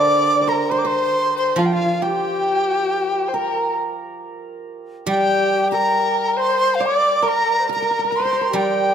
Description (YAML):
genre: chinese traditional, Chinese chamber ensemble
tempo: 69 BPM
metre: 4/4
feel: rubato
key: G yu mode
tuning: A4 = 439 Hz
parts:
  - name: large dizi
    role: melody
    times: 0.0-8.9 s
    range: F5 to D6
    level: -20 LUFS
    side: right 2 dB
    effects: none
  - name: dark erhu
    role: second line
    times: 0.0-8.9 s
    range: F4 to D5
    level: -22 LUFS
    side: left 6 dB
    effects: none
  - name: hammered dulcimer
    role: second line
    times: 0.0-8.9 s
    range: F4 to D5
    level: -24 LUFS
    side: right 4 dB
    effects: none
  - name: guzheng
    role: accompaniment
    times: 0.0-8.9 s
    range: D3 to G3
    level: -24 LUFS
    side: right 3 dB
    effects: none
room: moderate recital hall reverb, RT60 1.7 s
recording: none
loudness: -16 LUFS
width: side -8 dB against mid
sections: 0.0-8.9 A section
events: none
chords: none